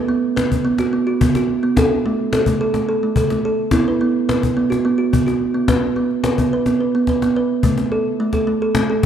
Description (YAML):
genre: world meditative, meditative tuned percussion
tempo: 214 BPM (eighths)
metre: 7/8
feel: straight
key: unclear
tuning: A4 = 438 Hz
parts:
  - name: kalimba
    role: arpeggios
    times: 0.0-9.0 s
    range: A3 to B4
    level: -17 LUFS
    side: right 2 dB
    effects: none
  - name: cajon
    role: percussion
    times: 0.4-9.1 s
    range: none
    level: -21 LUFS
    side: left 3 dB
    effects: none
room: wet echo chamber reverb, RT60 1.8 s, small room ambience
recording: dark, warm production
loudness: -15 LUFS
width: side -9 dB against mid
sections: 0.0-7.6 A section; 7.6-9.1 B section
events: none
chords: 0.0 B5; 1.8 D5; 3.7 E5; 5.7 N.C.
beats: 0.09 0.37 0.65 0.93 1.21 1.49 | 1.77 2.05 2.33 2.61 2.89 3.17 3.45 | 3.73 4.01 4.29 4.57 4.85 5.13 5.41 | 5.69 5.97 6.25 6.53 6.80 7.08 7.36 | 7.64 7.92 8.20 8.48 8.76 9.04